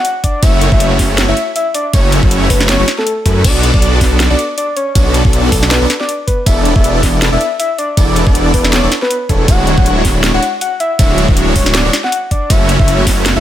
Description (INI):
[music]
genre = future bass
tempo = 159 BPM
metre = 4/4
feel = swing 56% on 16ths, half-time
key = F# minor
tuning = A4 = 440 Hz
[part]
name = soft octave-layered synth lead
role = melody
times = 0.0-13.4 s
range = A4 to F#5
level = -18 LUFS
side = left 2 dB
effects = chorus, sidechain pumping, digital delay
[part]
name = trap drum kit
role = drums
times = 0.0-13.3 s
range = crash cymbal, hi-hat, ride cymbal, snare drum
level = -18 LUFS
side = equal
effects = none
[part]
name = electronic kick drum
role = drums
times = 0.2-13.2 s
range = none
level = -12 LUFS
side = equal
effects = none
[part]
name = supersaw chords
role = riff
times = 0.4-13.4 s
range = G#3 to D5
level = -16 LUFS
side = equal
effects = sidechain pumping
[part]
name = wide detuned saw bass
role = bass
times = 0.4-13.4 s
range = D1 to F#2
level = -14 LUFS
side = equal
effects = chorus, sidechain pumping
[sound]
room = little or no reverb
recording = none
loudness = -10 LUFS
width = side -12 dB against mid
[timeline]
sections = 0.0-13.4 A section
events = none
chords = 0.4 F#m7; 3.4 Bm7; 6.5 E7sus4; 9.5 Dmaj9#11; 12.5 F#m7